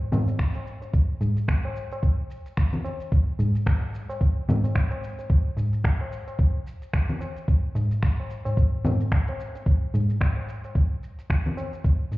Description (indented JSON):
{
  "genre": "downtempo",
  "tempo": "110 BPM",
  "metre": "4/4",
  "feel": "swing 58% on 16ths",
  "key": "none",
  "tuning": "none",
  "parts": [
    { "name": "organic electronic drum kit", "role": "drums", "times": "0.1-12.2 s", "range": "congas, finger snaps, hi-hat, shaker", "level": "-31 LUFS", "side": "left 1 dB", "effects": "none" },
    { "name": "tabla", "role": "percussion", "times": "0.1-12.2 s", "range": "none", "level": "-27 LUFS", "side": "equal", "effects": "none" },
    { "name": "electronic kick drum", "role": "drums", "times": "0.4-12.0 s", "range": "none", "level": "-21 LUFS", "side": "equal", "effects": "none" }
  ],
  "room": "light reverb, digital ambience",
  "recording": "heard muffled through a wall, club reverb, EQ",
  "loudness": "-22 LUFS",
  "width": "side -19 dB against mid",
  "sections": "0.9-12.2 A section",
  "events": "none",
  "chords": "none",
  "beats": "0.39 | 0.94 1.48 2.03 2.57 | 3.12 3.66 4.21 4.75 | 5.30 5.85 6.39 6.94 | 7.48 8.03 8.57 9.12 | 9.66 10.21 10.76 11.30 | 11.85"
}